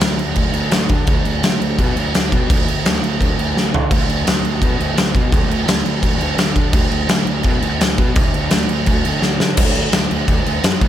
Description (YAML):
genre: garage rock duo or trio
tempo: 169 BPM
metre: 4/4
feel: straight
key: unclear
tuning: A4 = 440 Hz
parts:
  - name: fuzz picked electric bass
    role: bass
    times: 0.0-10.9 s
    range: D2 to D3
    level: -20 LUFS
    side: equal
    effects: overdrive
  - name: oversized low-tuned drum kit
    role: drums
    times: 0.0-10.9 s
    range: crash cymbal, kick drum, snare drum, toms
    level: -15 LUFS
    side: equal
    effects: none
room: little or no reverb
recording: none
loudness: -14 LUFS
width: side -11 dB against mid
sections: 0.0-9.6 A section; 9.6-10.9 B section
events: drum fill 3.5-3.9, 9.2-9.6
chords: none